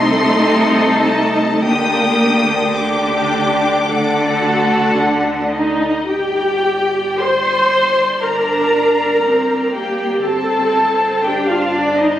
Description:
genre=classical, slow romantic movement for string orchestra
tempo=52-61 BPM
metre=4/4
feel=rubato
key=G minor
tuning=A4 = 440 Hz
part: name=rich studio violin section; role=melody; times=0.0-12.2 s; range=C5 to Eb6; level=-24 LUFS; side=left 3 dB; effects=none
part: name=warm studio violin section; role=second line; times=0.0-12.2 s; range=G4 to C6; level=-19 LUFS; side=left 2 dB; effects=none
part: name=dark symphonic viola section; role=accompaniment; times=0.0-12.2 s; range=A3 to C5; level=-16 LUFS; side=equal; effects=none
part: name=clear symphonic double bass section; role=bass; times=0.0-12.2 s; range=G1 to D2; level=-25 LUFS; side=right 1 dB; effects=none
part: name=rich symphonic cello section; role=bass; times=0.0-12.2 s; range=C3 to D4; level=-22 LUFS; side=right 2 dB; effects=none
room=moderate concert hall reverb, RT60 2.2 s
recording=recorded on a phone in the room, studio reverb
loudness=-13 LUFS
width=side -11 dB against mid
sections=0.0-6.1 A section; 6.1-12.2 B section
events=none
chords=0.0 Adim/C; 1.7 Gm/D; 3.9 D; 6.1 Gm; 10.2 F69/G

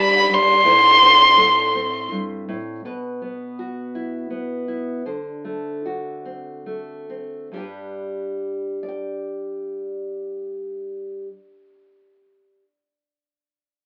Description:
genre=acoustic folk-pop ballad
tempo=68-83 BPM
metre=3/4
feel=straight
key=G major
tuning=A4 = 440 Hz
part: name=dark violin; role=melody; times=0.0-2.1 s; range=B5 to C6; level=-14 LUFS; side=equal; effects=none
part: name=nylon-string guitar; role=accompaniment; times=0.0-12.6 s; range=G2 to G5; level=-29 LUFS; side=equal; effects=none
room=moderate studio ambience, RT60 0.5 s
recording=band playing live in one room, AM radio sound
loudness=-18 LUFS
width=mono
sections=0.0-2.8 A section; 2.8-7.5 B section; 7.5-12.8 C section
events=slowing down 2.8-7.5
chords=0.0 G5; 0.6 Am; 2.8 Bsus4; 5.1 D7; 7.5 G

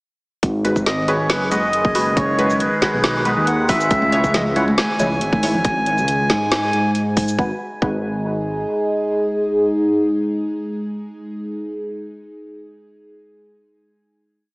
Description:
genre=deep dubstep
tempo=138 BPM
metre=4/4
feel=half-time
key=G# minor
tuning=A4 = 442 Hz
part: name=overtone-sweeping drone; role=sustained chords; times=1.0-11.2 s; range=C#3 to G#4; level=-22 LUFS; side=equal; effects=chorus, built-in reverb
part: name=dark detuned saw bass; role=bass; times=0.4-8.7 s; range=F#1 to G#2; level=-22 LUFS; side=equal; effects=none
part: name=electronic kick drum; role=drums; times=0.4-8.0 s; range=none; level=-20 LUFS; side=equal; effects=studio reverb
part: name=garage drum kit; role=drums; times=0.4-7.4 s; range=hi-hat, shaker, snare drum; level=-23 LUFS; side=equal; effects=studio reverb
part: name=filtered dub chord stab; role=stabs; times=0.6-11.7 s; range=G#3 to C#5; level=-24 LUFS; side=equal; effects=phaser, lush chorus, cassette tape, dub echo
part: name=melodica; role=melody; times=0.9-6.9 s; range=B4 to G#5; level=-21 LUFS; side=equal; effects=dub echo
part: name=congas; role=percussion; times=4.0-5.6 s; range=none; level=-24 LUFS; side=equal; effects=none
room=wet lush hall reverb, RT60 1.9 s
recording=dreamy mix soaked in reverb, small speaker sound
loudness=-16 LUFS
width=side -30 dB against mid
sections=0.4-7.4 drop; 7.4-10.9 final chord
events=drop 0.4-7.4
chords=0.4 G#m7; 3.9 C#m; 7.4 G#m7

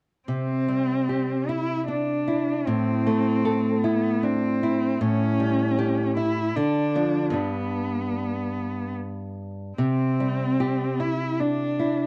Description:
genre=romantic duo for cello and classical guitar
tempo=75 BPM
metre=3/4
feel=rubato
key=C major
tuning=A4 = 440 Hz
part: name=rich cello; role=melody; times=0.3-12.1 s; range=B3 to E4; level=-28 LUFS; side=equal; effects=plate reverb
part: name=nylon-string guitar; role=accompaniment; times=0.3-12.1 s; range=G2 to A4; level=-27 LUFS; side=equal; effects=none
room=moderate studio reverb, RT60 0.5 s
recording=dark, warm production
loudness=-25 LUFS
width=mono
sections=0.3-12.1 A section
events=none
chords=0.3 C; 2.7 Am; 5.0 A7; 6.6 Dm; 7.4 G; 9.8 C

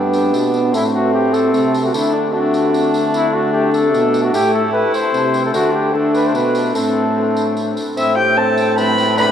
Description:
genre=classical, renaissance-style consort dance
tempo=150 BPM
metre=3/4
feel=straight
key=A dorian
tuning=A4 = 439 Hz
part: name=mellow cornet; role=melody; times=0.0-9.3 s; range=D4 to C5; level=-20 LUFS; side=left 2 dB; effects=none
part: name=warm viola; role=second line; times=0.0-9.3 s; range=C4 to B5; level=-19 LUFS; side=equal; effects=none
part: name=mellow bassoon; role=accompaniment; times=0.0-9.3 s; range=A3 to D4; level=-19 LUFS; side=left 1 dB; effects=none
part: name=clear trombone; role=bass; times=0.0-9.3 s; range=G2 to D3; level=-21 LUFS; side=right 1 dB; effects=none
part: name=tambourine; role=percussion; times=0.1-9.3 s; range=none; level=-33 LUFS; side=equal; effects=none
room=wet huge ambient reverb, RT60 8.6 s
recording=in a vast, echoing space, vinyl crackle, small room ambience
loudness=-13 LUFS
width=side -9 dB against mid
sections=0.0-8.0 A section; 8.0-9.3 B section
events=none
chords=0.0 G; 0.7 Am; 1.9 D; 4.3 Am; 5.5 D5; 6.7 Am

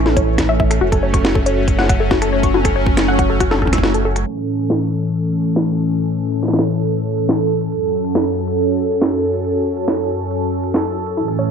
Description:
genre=IDM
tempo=139 BPM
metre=4/4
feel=straight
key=F# minor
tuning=A4 = 440 Hz
part: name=phased analog pad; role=sustained chords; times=0.0-11.5 s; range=F#2 to A4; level=-18 LUFS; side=equal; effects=phaser, chorus
part: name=rubbery square bass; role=bass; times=0.0-4.2 s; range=F#1 to A1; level=-19 LUFS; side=right 1 dB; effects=tube saturation
part: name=warbly dusty pluck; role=arpeggios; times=0.1-4.1, 11.2-11.5 s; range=E4 to E6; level=-20 LUFS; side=left 4 dB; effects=chorus, cassette tape, digital delay
part: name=organic electronic drum kit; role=drums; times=0.1-11.3 s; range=finger snaps, hi-hat, snare drum, toms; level=-20 LUFS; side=equal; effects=low-pass filter on snare, low-pass filter on hats, low-pass filter on toms, tape echo
part: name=electronic kick drum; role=drums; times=0.2-3.8 s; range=none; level=-18 LUFS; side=right 1 dB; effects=none
room=light reverb, digital ambience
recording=low-pass filter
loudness=-15 LUFS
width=side -6 dB against mid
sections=0.0-4.3 A section; 4.3-11.5 B section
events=filter sweep on synth arpeggio sound 0.0-4.3; kick drops out 3.8-4.3; filter sweep on drum 4.3-11.5; filter sweep on analog synth pad 4.3-11.5; filter sweep 4.3-11.5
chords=0.0 A; 0.8 F#m; 4.3 A; 7.7 F#m

